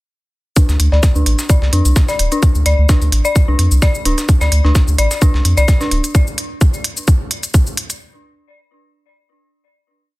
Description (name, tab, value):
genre	minimal techno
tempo	129 BPM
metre	4/4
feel	swing 54% on 16ths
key	D minor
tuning	A4 = 442 Hz
part	dark detuned synth bell	riff	0.6-5.8 s	D4 to D5	-20 LUFS	left 2 dB	chorus, sidechain pumping, low-pass filter, tape echo
part	breakbeat sampler-style drum kit	drums	0.6-6.0 s	hi-hat, snare drum	-28 LUFS	left 1 dB	sidechain pumping on hats, high-pass filter on hats, high-pass filter on snare
part	electronic cabasa and hi-hat	drums	0.6-8.0 s	none	-22 LUFS	equal	none
part	electronic kick drum	drums	0.6-7.6 s	none	-13 LUFS	equal	none
part	round analog bass	bass	0.7-6.0 s	D1 to F2	-13 LUFS	equal	sidechain pumping
room	little or no reverb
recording	dense, heavily limited modern master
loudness	-12 LUFS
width	side -20 dB against mid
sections	0.6-8.0 groove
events	filter sweep on synth bell 0.6-6.1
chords	none